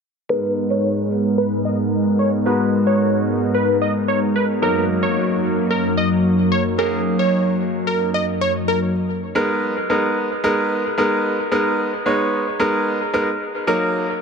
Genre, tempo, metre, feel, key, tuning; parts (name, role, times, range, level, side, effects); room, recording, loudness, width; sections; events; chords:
pop; 111 BPM; 4/4; straight; G# minor; A4 = 436 Hz
plucky unison lead; melody; 0.3-8.8 s; A#4 to D#5; -22 LUFS; equal; phaser, low-pass filter, dub echo
bright grand piano; accompaniment; 0.3-14.1 s; F#3 to C#5; -20 LUFS; equal; low-pass filter, dub echo
lush unison pad; sustained chords; 0.3-8.9 s; F#2 to A#4; -19 LUFS; equal; chorus, low-pass filter
moderate spring reverb, RT60 2.6 s; echo-heavy mix; -17 LUFS; side -5 dB against mid
0.3-8.9 A section; 8.9-14.2 B section
filter sweep 0.3-8.9
0.3 G#madd9; 4.6 D#m/F#; 8.9 G#madd9; 13.3 D#m/F#